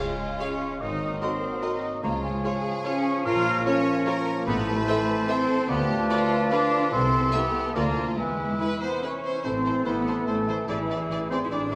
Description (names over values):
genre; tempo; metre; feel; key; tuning
cinematic; 146 BPM; 3/4; straight; Db major, A minor from 4.5 s; A4 = 435 Hz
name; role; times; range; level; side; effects
rich studio violin section; melody; 0.0-11.8 s; B4 to F5; -38 LUFS; equal; none
mellow hollow silver concert flute; second line; 0.0-11.8 s; E5 to F6; -35 LUFS; equal; none
mellow oboe; second line; 0.0-11.8 s; E4 to F5; -35 LUFS; equal; none
rich studio violin section; second line; 0.0-11.8 s; C4 to Db5; -38 LUFS; equal; none
warm clarinet; second line; 0.0-11.8 s; Ab4 to Db5; -37 LUFS; equal; none
dark studio viola section; accompaniment; 0.0-11.8 s; E4 to Db5; -38 LUFS; equal; none
mellow bassoon; accompaniment; 0.0-11.8 s; E3 to Ab3; -36 LUFS; equal; none
mellow French horn section; sustained chords; 0.0-11.8 s; E3 to Db5; -37 LUFS; equal; none
concert harp; arpeggios; 0.0-11.8 s; Ab2 to B5; -36 LUFS; equal; none
rich studio cello section; bass; 0.0-11.8 s; E3 to F4; -32 LUFS; equal; none
clear symphonic double bass section; bass; 0.8-11.8 s; Ab1 to E2; -36 LUFS; equal; none
room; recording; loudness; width
wet scoring stage reverb, RT60 1.6 s; none; -25 LUFS; mono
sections
0.0-9.4 A section; 9.4-11.8 B section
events
none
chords
0.0 Db; 0.8 Ab9; 2.0 Db; 3.2 Bbm; 4.5 Am; 5.7 Bdim/D; 6.9 Am/C; 7.8 Bb/D; 8.2 E; 9.4 Am; 10.7 E7/A